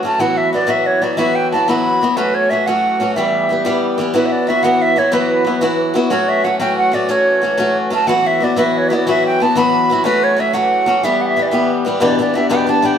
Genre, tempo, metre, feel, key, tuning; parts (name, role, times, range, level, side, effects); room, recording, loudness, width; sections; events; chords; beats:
celtic folk, Celtic jig; 122 BPM (dotted quarters); 6/8; straight; E dorian; A4 = 439 Hz
picked swing-style acoustic guitar; accompaniment; 0.0-13.0 s; E2 to G4; -16 LUFS; left 2 dB
musette accordion; drone; 0.0-13.0 s; E3; -27 LUFS; equal
wooden flute; melody; 0.1-13.0 s; B4 to B5; -16 LUFS; right 2 dB
wet stone room reverb, RT60 1.2 s; band playing live in one room; -13 LUFS; side -8 dB against mid
0.0-4.1 A section; 4.1-12.0 A section
0.2 Esus2; 2.2 F#m; 3.2 Em; 4.1 Esus2; 6.1 F#m; 8.1 Esus2; 10.0 F#m; 11.0 Em; 12.0 Em7
| 0.19 0.69 | 1.18 1.67 | 2.17 2.66 | 3.15 3.65 | 4.14 4.63 | 5.13 5.62 | 6.11 6.60 | 7.10 7.59 | 8.08 8.57 | 9.06 9.55 | 10.04 10.53 | 11.02 11.52 | 12.01 12.49